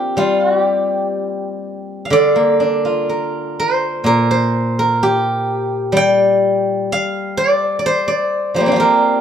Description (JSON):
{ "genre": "chinese traditional, Chinese solo plucked strings", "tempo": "63 BPM", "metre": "2/4", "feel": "rubato", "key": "G yu mode", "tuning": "A4 = 440 Hz", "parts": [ { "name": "steel-string zither", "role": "solo", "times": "0.0-9.2 s", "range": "Bb2 to G5", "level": "-14 LUFS", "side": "equal", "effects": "none" } ], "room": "light reverb", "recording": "band playing live in one room", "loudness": "-14 LUFS", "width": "side -8 dB against mid", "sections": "0.0-2.1 A section; 2.1-9.2 B section", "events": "none", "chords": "none" }